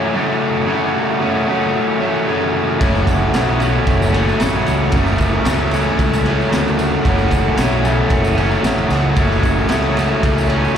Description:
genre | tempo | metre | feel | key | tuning
garage rock duo or trio | 113 BPM | 4/4 | straight | F# minor | A4 = 439 Hz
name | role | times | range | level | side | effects
biting overdriven guitar | riff | 0.0-10.8 s | F#2 to C#4 | -16 LUFS | equal | spring reverb, slapback echo
fuzz fingered electric bass | bass | 2.8-10.7 s | F#1 to D2 | -19 LUFS | equal | overdrive
raw garage drum kit | drums | 2.8-10.6 s | kick drum, ride cymbal, snare drum | -21 LUFS | equal | none
tambourine | percussion | 2.8-10.7 s | none | -38 LUFS | equal | none
room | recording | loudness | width
light reverb | live gig heard through the venue's PA, recital hall reverb | -14 LUFS | side -8 dB against mid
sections
0.0-10.8 A section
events
none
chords
0.0 F#m

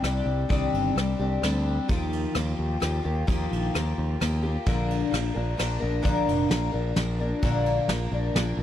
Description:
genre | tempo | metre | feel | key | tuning
folk rock and heartland rock | 130 BPM | 3/4 | straight | unclear | A4 = 440 Hz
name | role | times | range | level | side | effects
picked twelve-string acoustic guitar | accompaniment | 0.0-8.6 s | Bb2 to Bb4 | -27 LUFS | left 2 dB | wide subtle chorus
modern bright picked electric bass | bass | 0.0-8.6 s | F1 to Eb2 | -28 LUFS | equal | none
soft brush drum kit | drums | 0.0-8.5 s | kick drum, ride cymbal, rim click, snare drum | -30 LUFS | equal | none
room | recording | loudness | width
little or no reverb | dry, close 1970s-style studio recording | -23 LUFS | side -11 dB against mid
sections
0.0-8.6 A section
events
none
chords
0.0 Cmadd9; 1.9 Ebadd9; 4.7 Bb

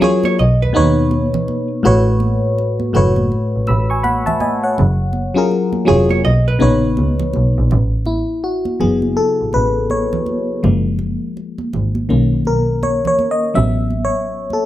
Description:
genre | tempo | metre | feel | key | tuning
R&B, neo-soul | 82 BPM | 4/4 | swing 62% on 16ths | unclear | A4 = 437 Hz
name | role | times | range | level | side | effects
vintage hollow-body jazz guitar | second line | 0.0-7.5 s | G#4 to D#5 | -20 LUFS | right 4 dB | plate reverb
FM electric piano | accompaniment | 0.0-14.7 s | A2 to E6 | -16 LUFS | left 2 dB | chorus
congas | percussion | 0.0-14.6 s | none | -25 LUFS | right 5 dB | none
clear double bass | bass | 0.4-14.0 s | E#1 to D#2 | -16 LUFS | right 1 dB | none
room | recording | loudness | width
moderate small room reverb, RT60 0.6 s | dark, warm production, faint mains hum | -14 LUFS | side -13 dB against mid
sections
0.0-7.7 A section; 7.7-14.7 B section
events
FM electric piano solo 7.7-14.7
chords
0.4 Badd9; 1.8 A69; 4.8 F#maj9; 6.2 Bmaj9; 7.7 A69; 10.6 F#maj9; 12.1 Bmaj9; 13.6 A69

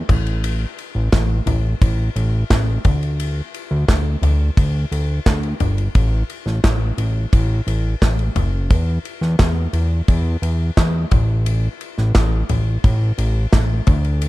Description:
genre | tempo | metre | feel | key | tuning
piano-driven pop | 87 BPM | 4/4 | straight | unclear | A4 = 441 Hz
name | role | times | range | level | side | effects
fat analog bass | bass | 0.0-14.3 s | F#1 to E2 | -18 LUFS | equal | none
natural country drum kit | drums | 0.1-14.3 s | crash cymbal, handclaps, kick drum, ride cymbal, snare drum, toms | -19 LUFS | equal | none
room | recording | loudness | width
little or no reverb | dark, warm production | -16 LUFS | side -18 dB against mid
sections
0.0-14.3 A section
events
none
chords
none

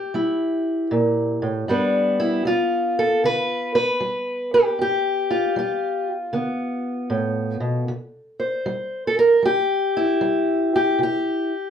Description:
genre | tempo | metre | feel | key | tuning
acoustic country blues, solo or duo | 77 BPM | 4/4 | swing 65% on 8ths | G mixolydian | A4 = 440 Hz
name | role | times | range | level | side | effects
fingerpicked steel-string acoustic guitar | solo | 0.0-11.7 s | G2 to C5 | -19 LUFS | equal | none
room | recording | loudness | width
wet studio ambience, RT60 0.5 s | heard from further back in the room | -19 LUFS | side -8 dB against mid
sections
0.0-11.7 A section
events
none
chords
0.0 C7 (rootless); 1.7 G7; 7.9 C

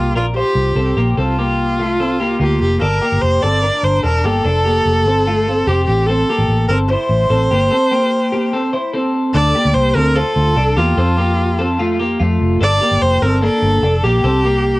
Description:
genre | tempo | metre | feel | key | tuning
jangly indie pop | 147 BPM | 4/4 | straight | D minor | A4 = 440 Hz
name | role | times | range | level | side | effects
clear viola | melody | 0.0-14.8 s | F4 to D5 | -17 LUFS | equal | cassette tape
twelve-string electric guitar | arpeggios | 0.0-14.8 s | A3 to C5 | -18 LUFS | left 1 dB | cassette tape
vintage muted fingered electric bass | bass | 0.0-14.8 s | E1 to F2 | -17 LUFS | equal | none
room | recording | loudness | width
light reverb | home recording on cassette | -13 LUFS | side -20 dB against mid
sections
0.0-2.8 A section; 2.8-9.3 B section; 9.3-14.8 C section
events
none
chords
0.0 C7sus4; 2.8 Gm; 4.5 Dm/F; 5.9 Am7; 9.3 Dm; 11.0 F; 12.6 Gm; 14.2 C5

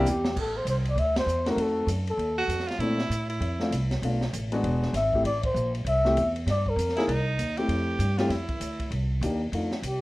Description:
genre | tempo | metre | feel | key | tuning
jazz, small-group swing and bop | 196 BPM | 4/4 | swing 61% on 8ths | F major | A4 = 440 Hz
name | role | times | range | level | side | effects
bright tenor saxophone | second line | 0.0-0.1, 2.4-3.9, 7.0-8.9 s | Eb4 to G4 | -32 LUFS | right 2 dB | none
dark baby grand piano | accompaniment | 0.0-9.7 s | Ab3 to Ab4 | -28 LUFS | left 1 dB | none
upright bass | bass | 0.0-10.0 s | E1 to Bb2 | -28 LUFS | equal | none
trumpet with bucket mute | melody | 0.1-2.7, 5.0-7.3, 9.9-10.0 s | G4 to E5 | -27 LUFS | left 1 dB | none
open jazz drum kit | drums | 0.1-9.9 s | crash cymbal, hi-hat, kick drum, ride cymbal, snare drum | -35 LUFS | equal | none
room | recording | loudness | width
moderate studio reverb, RT60 0.8 s | worn, warbling old tape, cassette tape, warbly pitch drift | -24 LUFS | side -19 dB against mid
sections
0.4-10.0 A section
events
drum fill 0.1-0.4; band accent 1.1, 5.4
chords
0.4 Amadd11; 1.6 F7b9; 2.8 Bbmaj9#11; 4.0 Bm7b5; 4.6 E7; 5.3 Am; 6.5 Gm7; 7.1 C; 7.7 Fmaj9; 8.9 Cm7

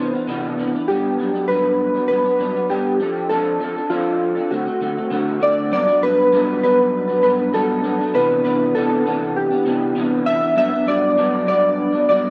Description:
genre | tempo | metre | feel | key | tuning
indie pop | 99 BPM | 4/4 | straight | G major | A4 = 440 Hz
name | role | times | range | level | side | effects
soft electric-piano-like synth keys | melody | 0.0-12.3 s | F4 to E5 | -20 LUFS | equal | ensemble chorus, slapback echo
electric guitar through a small old amp | accompaniment | 0.0-12.3 s | G2 to A4 | -23 LUFS | equal | analog chorus, vibrato effect
room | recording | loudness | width
light reverb | dry, close 1970s-style studio recording | -19 LUFS | mono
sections
0.0-5.7 A section; 5.7-12.3 B section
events
none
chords
0.0 Cmaj9; 0.9 Gmaj7; 3.0 F6; 4.5 D7; 5.7 Gmaj7; 8.1 Cmaj9; 10.6 Gmaj7

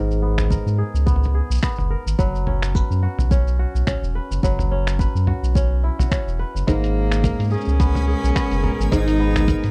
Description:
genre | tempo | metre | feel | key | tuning
folktronica | 107 BPM | 4/4 | swing 56% on 16ths | G# minor | A4 = 440 Hz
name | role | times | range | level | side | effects
kora | arpeggios | 0.0-9.7 s | G#2 to B4 | -29 LUFS | equal | low-pass filter, tape echo
warm sub bass | bass | 0.0-9.7 s | E1 to G#2 | -22 LUFS | equal | none
lo-fi sampler-style drum kit | drums | 0.1-9.7 s | finger snaps, hi-hat, shaker, toms | -30 LUFS | equal | studio ambience
electronic kick drum | drums | 0.5-9.6 s | none | -24 LUFS | equal | studio ambience
rich cello | melody | 6.7-9.7 s | A#3 to D#4 | -27 LUFS | equal | none
warm string quartet | sustained chords | 6.7-9.7 s | B2 to A#4 | -31 LUFS | equal | none
backwards swelling texture | texture | 7.9-9.7 s | G#5 to B6 | -43 LUFS | equal | built-in reverb
room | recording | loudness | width
little or no reverb | dry, close 1970s-style studio recording | -20 LUFS | mono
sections
0.0-9.7 A section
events
none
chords
0.0 G#madd9; 2.2 F#sus4; 6.7 G#madd9

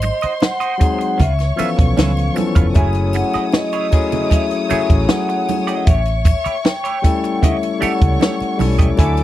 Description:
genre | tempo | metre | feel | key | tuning
lush 1970s-style soul | 77 BPM | 4/4 | straight | unclear | A4 = 441 Hz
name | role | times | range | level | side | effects
vibraphone with soft mallets | melody | 0.0-9.2 s | D#5 to G#5 | -22 LUFS | equal | none
dark studio violin section | second line | 0.0-9.2 s | B#4 to D#6 | -28 LUFS | equal | none
clean electric guitar | riff | 0.0-9.2 s | A3 to E#5 | -25 LUFS | right 8 dB | wah
vintage muted fingered electric bass | bass | 0.0-9.2 s | E#1 to D2 | -18 LUFS | right 1 dB | none
compact cocktail drum kit | drums | 0.0-9.2 s | hi-hat, kick drum, snare drum | -15 LUFS | equal | none
congas | percussion | 0.0-8.8 s | none | -25 LUFS | right 7 dB | none
triangle | percussion | 0.0-9.2 s | none | -39 LUFS | left 15 dB | none
barky tine electric piano | accompaniment | 0.8-9.2 s | E3 to A4 | -20 LUFS | left 5 dB | overdrive
room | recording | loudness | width
little or no reverb | dry, close 1970s-style studio recording | -14 LUFS | side -14 dB against mid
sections
0.0-9.2 A section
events
none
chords
0.0 G#7; 1.2 C#7alt; 2.8 F#m9; 5.9 A7

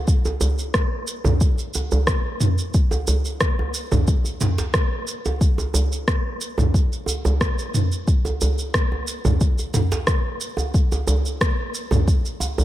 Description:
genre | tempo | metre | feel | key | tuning
downtempo | 90 BPM | 4/4 | straight | none | none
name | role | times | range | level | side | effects
deep house drum kit | drums | 0.1-12.6 s | rim click, shaker, toms | -24 LUFS | equal | none
electronic kick drum | drums | 0.1-12.2 s | none | -20 LUFS | equal | none
djembe | percussion | 0.3-12.6 s | none | -23 LUFS | right 1 dB | none
room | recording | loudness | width
light reverb | none | -19 LUFS | side -14 dB against mid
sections
0.0-12.6 A section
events
none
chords
none

